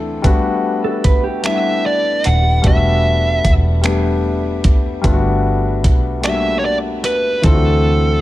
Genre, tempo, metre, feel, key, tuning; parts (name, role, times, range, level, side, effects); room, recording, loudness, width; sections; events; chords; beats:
slow six-eight R&B; 50 BPM (dotted quarters); 6/8; straight; G major; A4 = 440 Hz
warm concert grand piano; accompaniment; 0.0-8.2 s; E3 to F#5; -19 LUFS; left 3 dB
vintage muted fingered electric bass; bass; 0.0-8.2 s; Eb1 to D2; -17 LUFS; equal
dusty soul sampler-style drum kit; drums; 0.2-7.6 s; finger snaps, hi-hat, kick drum; -15 LUFS; equal
mellow electric guitar; second line; 0.8-2.4 s; G4 to B4; -24 LUFS; right 6 dB
fuzz lead guitar; melody; 1.5-8.2 s; A4 to F#5; -19 LUFS; right 1 dB; distortion
little or no reverb; -13 LUFS; side -15 dB against mid
0.0-8.2 A section
0.2 Gmaj9; 2.6 Em11; 5.0 Gmaj9; 7.4 D7
| 0.24 1.44 | 2.64 3.84 | 5.04 6.24 | 7.44